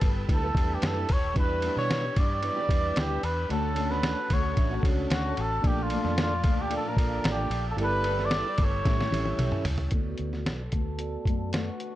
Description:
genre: indie pop, bedroom pop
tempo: 112 BPM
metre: 4/4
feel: straight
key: unclear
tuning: A4 = 440 Hz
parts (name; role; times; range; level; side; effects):
- trumpet with cup mute; melody; 0.0-12.0 s; F4 to D5; -31 LUFS; equal; lush chorus, low-pass filter
- nylon-string guitar; accompaniment; 0.0-11.9 s; A2 to A4; -35 LUFS; left 3 dB; wide subtle chorus, vibrato effect, low-pass filter
- ensemble organ-string; sustained chords; 0.0-9.9 s; D4 to E6; -40 LUFS; equal; ensemble chorus
- vintage muted fingered electric bass; bass; 0.0-11.7 s; Eb1 to B2; -32 LUFS; equal; tube saturation
- lo-fi sampler-style drum kit; drums; 0.0-11.9 s; hi-hat, kick drum, ride cymbal, snare drum, toms; -28 LUFS; equal; none
- mellow tonewheel organ; accompaniment; 0.3-11.7 s; G3 to E5; -35 LUFS; right 4 dB; slow rotary speaker, cassette tape, low-pass filter
room: light reverb, digital ambience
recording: dry, gritty hardware recording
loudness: -24 LUFS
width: side -14 dB against mid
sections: 0.0-9.9 A section; 9.9-12.0 B section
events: drum fill 8.9-9.9; filter sweep 9.9-12.0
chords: 0.0 G69; 1.4 Em7; 3.5 Dmaj7; 5.6 Bbmaj7; 7.8 G69; 8.9 A7; 9.9 D6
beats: 0.29 0.82 | 1.36 1.89 2.43 2.96 | 3.50 4.04 4.57 5.11 | 5.64 6.18 6.71 7.25 | 7.79 8.32 8.86 9.39 | 9.93 10.46 11.00 11.54

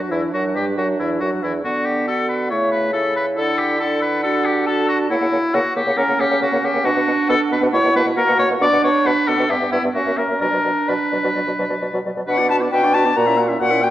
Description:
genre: quick classical-period movement for wind quintet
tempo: 136 BPM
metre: 4/4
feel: rubato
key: B minor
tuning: A4 = 443 Hz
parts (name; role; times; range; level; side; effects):
- silver concert flute; melody; 0.0-13.9 s; E4 to A#5; -24 LUFS; left 4 dB; none
- clear French horn; accompaniment; 0.0-13.9 s; E3 to F#4; -27 LUFS; equal; none
- mellow clarinet; accompaniment; 0.0-13.9 s; A3 to F#4; -24 LUFS; right 5 dB; none
- clear oboe; second line; 0.1-13.9 s; E4 to F#5; -20 LUFS; left 2 dB; none
- warm bassoon; bass; 0.1-13.9 s; E2 to D3; -22 LUFS; right 1 dB; none
room: moderate scoring stage reverb, RT60 1.7 s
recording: worn, warbling old tape, cassette tape, warbly pitch drift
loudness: -16 LUFS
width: side -13 dB against mid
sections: 0.0-12.3 A section; 12.3-13.9 A section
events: none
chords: 0.0 Em9; 1.6 D; 2.5 A/C#; 3.4 D; 5.1 F#7/C#; 6.8 Bm; 7.7 F#7/B; 8.6 Bm; 9.5 Em/G; 10.0 F#7; 10.4 Bm; 13.2 F#7/A#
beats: 0.33 0.77 1.21 | 1.64 2.08 2.51 2.94 | 3.37 3.80 4.23 4.67 | 5.10 5.54 5.97 6.41 | 6.85 7.29 7.73 8.17 | 8.61 9.05 9.50 9.95 | 10.42 10.88 11.35 11.82 | 12.28 12.72 13.16 13.61

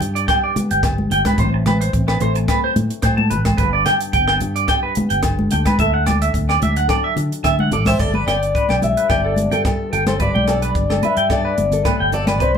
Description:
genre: highlife guitar band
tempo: 109 BPM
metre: 4/4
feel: straight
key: G major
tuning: A4 = 441 Hz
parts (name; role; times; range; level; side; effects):
- flamenco guitar; accompaniment; 0.0-12.6 s; G2 to B4; -28 LUFS; left 6 dB; none
- fingered electric bass; bass; 0.0-12.6 s; G1 to D3; -21 LUFS; equal; none
- compact cocktail drum kit; drums; 0.0-12.5 s; hi-hat, kick drum, rim click; -23 LUFS; right 1 dB; none
- congas; percussion; 0.0-12.6 s; none; -22 LUFS; equal; none
- clean electric guitar; arpeggios; 0.2-12.6 s; A4 to A5; -20 LUFS; right 2 dB; phaser
- agogo bells; percussion; 0.3-12.4 s; none; -28 LUFS; left 4 dB; none
- fingerpicked acoustic archtop guitar; melody; 7.7-12.6 s; A4 to E5; -20 LUFS; left 4 dB; slapback echo
room: wet small room reverb, RT60 0.6 s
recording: band playing live in one room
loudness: -15 LUFS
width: side -7 dB against mid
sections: 0.0-8.0 A section; 8.0-12.6 B section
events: none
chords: 0.0 G; 1.4 Amadd9; 3.6 G; 5.8 Dadd9; 8.0 Gadd9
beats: 0.29 0.84 | 1.39 1.94 2.49 3.04 | 3.59 4.14 4.69 5.24 | 5.79 6.34 6.89 7.44 | 7.99 8.54 9.10 9.65 | 10.20 10.75 11.30 11.85 | 12.40

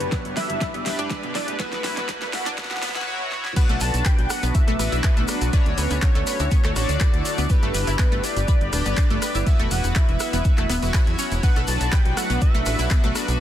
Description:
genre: progressive house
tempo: 122 BPM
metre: 4/4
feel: straight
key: B minor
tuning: A4 = 440 Hz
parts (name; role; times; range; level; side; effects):
- wide unison lead; melody; 0.0-13.1 s; B4 to A5; -29 LUFS; right 1 dB; analog chorus, sidechain pumping, ping-pong delay
- shimmering ambient pad; sustained chords; 0.0-13.4 s; D3 to A4; -33 LUFS; right 2 dB; chorus, built-in reverb, vintage 12-bit sampler grit, sidechain pumping
- chorused polysynth; stabs; 0.0-13.4 s; A3 to D5; -30 LUFS; left 3 dB; sidechain pumping, ping-pong delay
- tight sequencer bass; bass; 0.0-13.4 s; D1 to E2; -25 LUFS; equal; tube saturation, sidechain pumping
- deep house drum kit; drums; 0.0-13.4 s; crash cymbal, handclaps, hi-hat, rim click, snare drum; -30 LUFS; equal; none
- riser and swell; sound effects; 0.0-3.6 s; none; -36 LUFS; right 2 dB; none
- analog pluck; arpeggios; 0.1-13.1 s; B2 to B4; -31 LUFS; left 1 dB; analog chorus, sidechain pumping, ping-pong delay
- electronic kick drum; drums; 0.1-13.0 s; none; -19 LUFS; equal; none
- tube shaker; percussion; 3.6-13.4 s; none; -33 LUFS; left 2 dB; none
room: digital ambience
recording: dense, heavily limited modern master, high-pass filter, faint mains hum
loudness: -19 LUFS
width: side -11 dB against mid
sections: 0.0-3.6 A section; 3.6-13.4 B section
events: build-up 0.0-3.6; drum fill 0.0-3.1, 3.3; riser 0.0-3.1; filter sweep on synth pluck 0.0-3.6; filter sweep on analog polysynth 0.0-3.6; filter sweep 0.0-3.6; swell 2.6-3.6; drop 3.6-13.4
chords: 0.0 G; 1.6 Esus2; 3.6 Bm; 5.5 Dmaj7; 7.5 G; 9.5 Esus2; 11.4 Bm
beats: 0.12 0.61 1.10 | 1.60 2.09 2.58 3.07 | 3.56 4.06 4.55 5.04 | 5.53 6.02 6.51 7.01 | 7.50 7.99 8.48 8.97 | 9.46 9.96 10.45 10.94 | 11.43 11.92 12.42 12.91

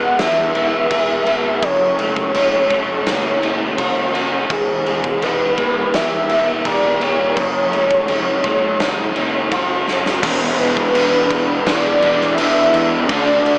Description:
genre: rock, shoegaze and dream pop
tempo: 84 BPM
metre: 4/4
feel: straight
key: E mixolydian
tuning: A4 = 439 Hz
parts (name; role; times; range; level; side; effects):
- warm velvety synth lead; melody; 0.0-13.6 s; G#4 to F#5; -21 LUFS; equal; chorus
- crunchy overdriven guitar; riff; 0.0-13.6 s; E2 to G#4; -24 LUFS; equal; ensemble chorus
- overdriven semi-hollow guitar; riff; 0.0-13.6 s; D3 to C#5; -25 LUFS; equal; reverse reverb
- fuzz fingered electric bass; bass; 0.0-13.6 s; E1 to E2; -28 LUFS; equal; overdrive
- big rock drum kit; drums; 0.2-13.6 s; crash cymbal, kick drum, snare drum; -26 LUFS; equal; none
- crunchy overdriven guitar; riff; 10.2-13.6 s; E2 to D4; -26 LUFS; equal; none
room: wet spring reverb, RT60 1.8 s, studio reverb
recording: small speaker sound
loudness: -17 LUFS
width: mono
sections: 0.0-10.2 A section; 10.2-13.6 B section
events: drum fill 9.9-10.2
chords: 0.0 E; 1.6 F#m7; 4.5 E; 7.4 F#m7; 10.2 E7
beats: 0.20 0.91 | 1.63 2.35 3.06 3.78 | 4.50 5.21 5.93 6.65 | 7.37 8.08 8.80 9.52 | 10.23 10.95 11.67 12.38 | 13.10

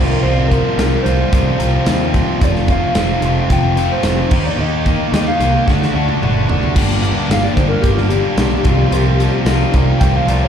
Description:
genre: classic rock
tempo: 110 BPM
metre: 4/4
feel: straight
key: G minor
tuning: A4 = 439 Hz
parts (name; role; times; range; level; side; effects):
- electric slide guitar; melody; 0.0-10.5 s; F4 to G5; -21 LUFS; left 1 dB; slapback echo
- cranked stack guitar; riff; 0.0-10.5 s; F2 to G4; -21 LUFS; right 11 dB; overdrive, slapback echo
- sludgy distorted guitar; riff; 0.0-10.5 s; F2 to G4; -20 LUFS; left 11 dB; overdrive, slapback echo
- overdriven picked electric bass; bass; 0.0-10.5 s; F1 to Eb2; -17 LUFS; equal; none
- big rock drum kit; drums; 0.5-10.4 s; crash cymbal, hi-hat, kick drum, snare drum, tambourine, toms; -18 LUFS; equal; none
room: small room ambience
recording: live gig heard through the venue's PA, club reverb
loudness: -12 LUFS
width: side -8 dB against mid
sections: 0.0-6.8 A section; 6.8-10.5 B section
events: drum fill 5.7-6.8; electric slide guitar solo 6.8-10.5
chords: 0.0 Csus4; 2.4 F; 4.3 Eb; 5.7 D; 6.8 Gm; 8.7 Csus4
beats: | 0.23 0.78 1.32 1.86 | 2.41 2.95 3.50 4.04 | 4.58 5.13 5.67 6.22 | 6.76 7.30 7.84 8.39 | 8.93 9.47 10.01

